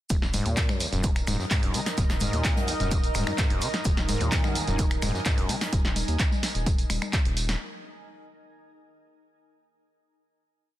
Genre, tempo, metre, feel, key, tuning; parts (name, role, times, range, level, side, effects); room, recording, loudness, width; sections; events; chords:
acid house; 128 BPM; 4/4; straight; Eb minor pentatonic; A4 = 439 Hz
overdriven acid bass; riff; 0.1-5.6 s; Eb2 to Db3; -31 LUFS; equal; distortion, vintage 12-bit sampler grit, sidechain pumping, tape echo
round analog bass; bass; 0.1-7.6 s; Eb1 to Eb2; -30 LUFS; equal; sidechain pumping
electronic kick drum; drums; 0.1-7.2 s; -26 LUFS; equal
oversized low-tuned drum kit; drums; 0.1-5.7 s; hi-hat, shaker, snare drum; -42 LUFS; left 2 dB
punchy analog drum machine; drums; 0.1-7.6 s; congas, finger snaps, handclaps, hi-hat, snare drum, tambourine; -29 LUFS; equal
granular cloud pad; texture; 1.0-5.7 s; Eb4 to Bb5; -35 LUFS; right 1 dB; built-in reverb, sidechain pumping
warm analog pad; sustained chords; 3.9-5.7 s; Eb3 to Bb4; -35 LUFS; right 2 dB; chorus, sidechain pumping
light reverb, small room ambience; dense, heavily limited modern master; -23 LUFS; side -14 dB against mid
0.1-7.6 drop
drop 0.1-7.6
0.1 Eb5